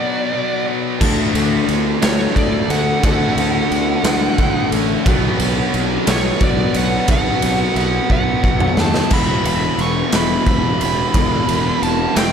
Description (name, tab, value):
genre	quiet-loud alternative rock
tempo	59 BPM (dotted quarters)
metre	6/8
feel	straight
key	unclear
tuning	A4 = 440 Hz
part	high-gain lead guitar	melody	0.0-12.3 s	C#5 to C#6	-22 LUFS	right 2 dB	distortion, slapback echo, tape echo
part	fuzz guitar	riff	0.0-12.3 s	E2 to D4	-23 LUFS	left 11 dB	distortion, slapback echo
part	scooped high-gain guitar	riff	0.0-12.3 s	E2 to D4	-25 LUFS	right 10 dB	distortion, slapback echo
part	raw garage guitar	riff	1.0-12.3 s	E2 to D4	-24 LUFS	equal	overdrive, slapback echo
part	fuzz fingered electric bass	bass	1.0-12.3 s	E1 to D#2	-22 LUFS	equal	overdrive
part	raw garage drum kit	drums	1.0-12.3 s	crash cymbal, kick drum, ride cymbal, snare drum, toms	-18 LUFS	equal	none
room	moderate lush hall reverb, RT60 1.8 s, small room ambience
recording	big arena sound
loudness	-14 LUFS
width	side -7 dB against mid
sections	0.0-1.0 A section; 1.0-12.3 B section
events	break 0.0-1.0; drum fill 8.1-9.1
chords	0.0 Bm; 1.0 D; 5.1 B5; 9.1 E5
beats	0.00 | 1.01 2.02 | 3.04 4.05 | 5.06 6.08 | 7.09 8.10 | 9.12 10.13 | 11.14 12.16